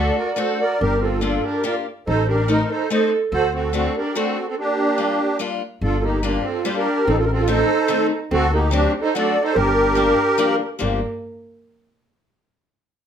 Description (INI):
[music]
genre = musette waltz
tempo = 144 BPM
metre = 3/4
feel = straight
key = G minor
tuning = A4 = 439 Hz
[part]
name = musette accordion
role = melody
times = 0.0-11.0 s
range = D4 to Eb5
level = -20 LUFS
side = right 2 dB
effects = slapback echo
[part]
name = dark violin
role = second line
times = 0.0-11.0 s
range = Bb3 to A4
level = -25 LUFS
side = right 3 dB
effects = none
[part]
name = picked steel-string acoustic guitar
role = accompaniment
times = 0.0-11.0 s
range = Eb3 to A4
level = -24 LUFS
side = left 6 dB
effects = none
[part]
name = upright bass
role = bass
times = 0.0-11.0 s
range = G1 to D2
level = -22 LUFS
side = left 1 dB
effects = none
[sound]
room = moderate studio reverb, RT60 0.6 s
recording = none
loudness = -18 LUFS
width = side -8 dB against mid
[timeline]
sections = 0.0-5.8 A section; 5.8-10.8 B section; 10.8-12.1 C section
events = none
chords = 0.0 D; 0.8 Gm7; 2.1 Adim; 3.3 D7; 4.6 Gm7; 7.1 Adim; 8.3 D7; 9.6 Gm7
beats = 0.38 | 0.80 1.23 1.65 | 2.07 2.48 2.90 | 3.32 3.73 4.15 | 4.56 4.98 5.40 | 5.82 6.24 6.66 | 7.08 7.49 7.90 | 8.31 8.73 9.14 | 9.55 9.97 10.39 | 10.81